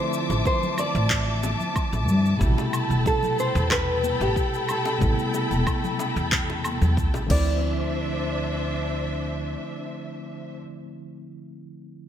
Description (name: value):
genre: sunset chillout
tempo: 92 BPM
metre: 4/4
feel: straight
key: D minor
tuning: A4 = 439 Hz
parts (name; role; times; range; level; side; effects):
- nylon-string guitar; melody; 0.0-10.6 s; G4 to D5; -28 LUFS; right 1 dB; digital delay
- tine electric piano; accompaniment; 0.0-12.1 s; B2 to E4; -30 LUFS; equal; auto-pan, digital delay
- dark symphonic string section; sustained chords; 0.0-10.6 s; F3 to D6; -30 LUFS; left 2 dB; none
- deep house drum kit; drums; 0.1-7.4 s; crash cymbal, handclaps, shaker, woodblock; -30 LUFS; equal; none
- upright bass; bass; 0.3-9.5 s; E1 to G2; -25 LUFS; equal; tube saturation
- bongos and congas; percussion; 0.3-7.3 s; none; -36 LUFS; left 4 dB; none
- electronic kick drum; drums; 0.5-7.4 s; none; -27 LUFS; equal; none
room: moderate plate reverb, RT60 2.1 s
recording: bright 1980s-style digital production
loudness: -21 LUFS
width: side -10 dB against mid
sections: 0.0-7.6 A section; 7.6-10.2 B section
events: none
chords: 0.0 Dm9; 2.4 Am9; 7.3 Dm9